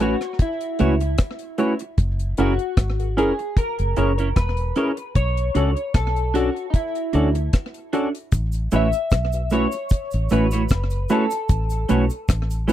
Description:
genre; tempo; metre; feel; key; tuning
lovers rock reggae; 76 BPM; 4/4; swing 54% on 16ths; A major; A4 = 440 Hz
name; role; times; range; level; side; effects
electric guitar through a small old amp; melody; 0.0-12.3 s; D#4 to E5; -27 LUFS; left 1 dB; analog chorus, tape echo
barky tine electric piano; accompaniment; 0.0-12.7 s; C#4 to B4; -23 LUFS; left 3 dB; overdrive
clean electric guitar; stabs; 0.0-12.7 s; A3 to D5; -22 LUFS; right 5 dB; analog chorus
fingered electric bass; bass; 0.0-12.7 s; E1 to D2; -22 LUFS; equal; none
deep reggae drum kit; drums; 0.0-12.7 s; hi-hat, kick drum, rim click; -19 LUFS; equal; none
cabasa; percussion; 8.3-12.7 s; none; -42 LUFS; right 7 dB; none
room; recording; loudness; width
little or no reverb; dry, close 1970s-style studio recording; -19 LUFS; side -12 dB against mid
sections
0.0-12.7 A section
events
none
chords
0.0 A6; 2.0 F#7; 5.2 Bm7; 8.3 A6

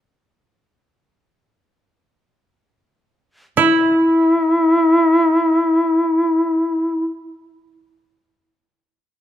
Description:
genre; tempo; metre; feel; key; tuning
japanese traditional, Japanese chamber music; free time; none; none; unclear; A4 = 439 Hz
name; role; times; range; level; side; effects
bright reedy shakuhachi; melody; 3.6-7.0 s; E4; -14 LUFS; left 1 dB; none
koto; second line; 3.6-7.0 s; E4; -19 LUFS; right 8 dB; none
room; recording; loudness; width
moderate recital hall reverb, RT60 1.6 s; minimal, uncompressed stereo recording; -14 LUFS; side -11 dB against mid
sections
0.0-3.6 A section; 3.6-8.4 B section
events
slowing down 0.0-3.6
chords
none

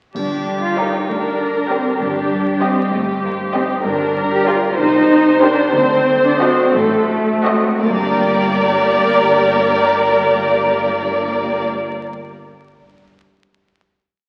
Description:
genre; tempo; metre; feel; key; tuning
cinematic, playful, whimsical film cue; 55-65 BPM (dotted quarters); 6/8; straight; G minor; A4 = 436 Hz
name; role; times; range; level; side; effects
warm studio viola section; accompaniment; 0.2-11.7 s; G4 to C5; -23 LUFS; equal; none
concert harp; arpeggios; 0.2-12.0 s; G2 to G5; -26 LUFS; equal; none
clear studio double bass section; bass; 0.2-11.7 s; G1 to D2; -31 LUFS; equal; none
warm studio cello section; bass; 0.2-11.7 s; A3 to G4; -21 LUFS; equal; none
triangle; percussion; 0.2-1.3 s; none; -42 LUFS; equal; none
rich studio violin section; melody; 0.8-11.6 s; C5 to Eb5; -21 LUFS; equal; none
warm studio violin section; second line; 0.8-11.7 s; F#4 to C5; -24 LUFS; equal; none
room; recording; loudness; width
wet scoring stage reverb, RT60 2.0 s; very old 78 rpm record, vinyl crackle; -16 LUFS; mono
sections
0.2-7.8 A section; 7.8-12.2 final chord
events
slowing down 2.9-7.8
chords
0.2 Gm; 2.0 Cm/G; 3.8 Gm; 4.8 Cm7; 5.7 D7b9; 7.8 Gm

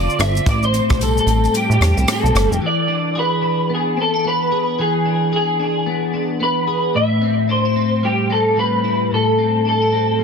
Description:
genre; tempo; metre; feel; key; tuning
indie pop, bedroom pop; 111 BPM; 4/4; swing 60% on 16ths; unclear; A4 = 440 Hz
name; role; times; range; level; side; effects
electric guitar through a small old amp; melody; 0.0-10.2 s; G4 to E5; -18 LUFS; equal; ensemble chorus, tape echo
electric guitar at the edge of break-up; accompaniment; 0.0-10.2 s; A2 to A4; -20 LUFS; left 1 dB; analog chorus, vibrato effect
plucky analog bass; bass; 0.0-2.6 s; F1 to A2; -17 LUFS; equal; none
compact cocktail drum kit; drums; 0.1-2.6 s; hi-hat, kick drum, rim click, shaker; -21 LUFS; equal; none
tambourine; percussion; 0.2-2.5 s; none; -37 LUFS; right 14 dB; none
room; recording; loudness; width
light reverb, studio ambience; dense, heavily limited modern master; -15 LUFS; side -6 dB against mid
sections
0.0-2.6 A section; 2.6-10.2 B section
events
clean electric guitar solo 0.0-2.6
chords
0.5 Am7; 2.6 E7; 6.9 Am7

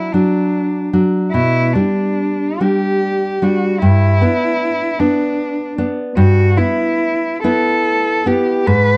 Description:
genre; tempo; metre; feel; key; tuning
romantic duo for cello and classical guitar; 74 BPM; 3/4; rubato; G major; A4 = 440 Hz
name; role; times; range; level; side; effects
warm cello; melody; 0.0-9.0 s; D4 to B4; -20 LUFS; equal; plate reverb
nylon-string guitar; accompaniment; 0.0-9.0 s; G2 to E4; -18 LUFS; equal; none
room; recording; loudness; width
light reverb; dark, warm production; -16 LUFS; mono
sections
0.0-9.0 A section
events
none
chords
0.0 D; 1.3 G/B; 3.8 G; 6.2 Em/G

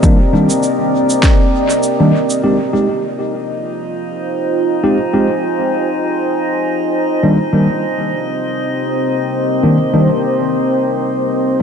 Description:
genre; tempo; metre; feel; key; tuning
ambient dub; 100 BPM; 4/4; swing 56% on 16ths; F dorian; A4 = 440 Hz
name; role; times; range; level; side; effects
deep dark ambient pad; sustained chords; 0.0-11.6 s; C4 to Ab5; -16 LUFS; equal; chorus, built-in reverb
tine electric piano; stabs; 0.0-11.6 s; Eb3 to G4; -16 LUFS; equal; lush chorus, dub echo
electronic cabasa and snare drum; drums; 0.0-2.4 s; none; -22 LUFS; right 1 dB; dub echo
electronic kick drum; drums; 0.0-1.4 s; none; -12 LUFS; equal; overdrive
drifting glass-harmonics texture; texture; 3.2-11.6 s; Eb4 to Eb5; -22 LUFS; left 3 dB; chorus, built-in reverb
room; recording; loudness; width
moderate huge ambient reverb, RT60 4.7 s; nothing above 10.9 kHz; -13 LUFS; side -7 dB against mid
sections
0.0-2.4 A section; 2.4-11.6 B section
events
none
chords
0.0 Cm7; 2.4 Fm7; 7.2 Cm7

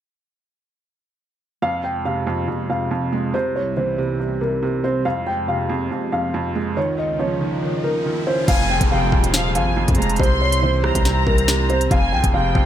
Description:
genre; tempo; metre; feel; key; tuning
hip hop, drill; 140 BPM; 4/4; half-time; F minor; A4 = 440 Hz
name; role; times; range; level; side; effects
dark concert grand piano; melody; 1.6-12.7 s; Bb4 to G5; -24 LUFS; equal; ping-pong delay
felt-muted upright piano; accompaniment; 1.6-12.7 s; F2 to Db4; -23 LUFS; right 4 dB; none
warm analog pad; sustained chords; 1.6-12.7 s; C2 to C5; -28 LUFS; left 2 dB; chorus
riser and downlifter; sound effects; 6.3-11.9 s; none; -31 LUFS; equal; none
warm studio violin section; second line; 8.5-12.7 s; F5 to C6; -24 LUFS; left 1 dB; ping-pong delay
hard-hitting 808-style bass; bass; 8.5-12.7 s; Eb1 to F2; -22 LUFS; left 1 dB; none
drill drum kit; drums; 8.5-12.7 s; crash cymbal, hi-hat, kick drum, rim click, snare drum; -19 LUFS; left 1 dB; none
room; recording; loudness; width
light reverb, digital ambience; none; -18 LUFS; side -10 dB against mid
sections
1.6-8.5 A section; 8.5-12.7 B section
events
riser 6.3-8.5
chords
1.6 Fm; 3.3 C; 5.1 Fm; 6.8 Dbadd9; 8.5 Fm; 10.2 C; 11.9 Fm

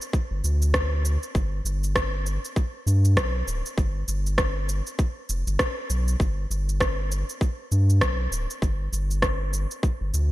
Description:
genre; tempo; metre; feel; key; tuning
organic downtempo; 99 BPM; 4/4; swing 59% on 16ths; G mixolydian; A4 = 440 Hz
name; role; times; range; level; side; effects
electronic shaker and rim click; drums; 0.0-10.3 s; none; -29 LUFS; equal; overdrive
electronic kick drum; drums; 0.1-10.0 s; none; -24 LUFS; equal; overdrive
round analog bass; bass; 0.3-10.3 s; D1 to G2; -23 LUFS; equal; sidechain pumping
room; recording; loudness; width
light reverb; bright 1980s-style digital production; -22 LUFS; side -16 dB against mid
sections
0.0-10.3 A section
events
none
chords
none

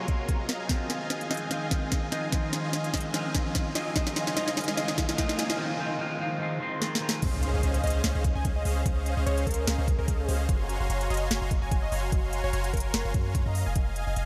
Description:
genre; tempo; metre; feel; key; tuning
future bass; 147 BPM; 4/4; swing 54% on 16ths, half-time; unclear; A4 = 440 Hz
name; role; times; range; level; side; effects
plucky unison lead; melody; 0.0-5.3, 7.8-13.1 s; Bb4 to Ab5; -40 LUFS; equal; vintage 12-bit sampler grit, sidechain pumping, analog delay
semi-hollow electric guitar; accompaniment; 0.0-7.2 s; C3 to F4; -36 LUFS; equal; phaser, sidechain pumping, analog delay
shimmering ambient pad; sustained chords; 0.0-5.6 s; Db3 to Bb4; -46 LUFS; equal; none
supersaw chords; riff; 0.0-14.3 s; Db4 to Db6; -37 LUFS; equal; sidechain pumping, low-pass filter, analog delay
electronic kick drum; drums; 0.1-13.8 s; none; -30 LUFS; equal; overdrive
trap drum kit; drums; 0.1-14.3 s; crash cymbal, hi-hat, snare drum; -35 LUFS; equal; overdrive
riser and impact; sound effects; 3.8-8.9 s; none; -42 LUFS; equal; none
warm 808-style bass; bass; 7.2-14.3 s; F1 to Gb2; -31 LUFS; equal; sidechain pumping
room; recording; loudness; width
wet huge ambient reverb, RT60 3.9 s; dreamy mix soaked in reverb; -28 LUFS; mono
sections
0.0-7.2 A section; 7.2-14.3 B section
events
build-up 0.0-7.2; drum fill 0.0-5.6, 6.8-7.2; drop 7.2-14.3; impact 7.2-8.9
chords
0.5 Fm7; 3.8 Bbm9; 7.2 Dbmaj7; 10.5 Gbmaj9#11; 13.6 Fm7

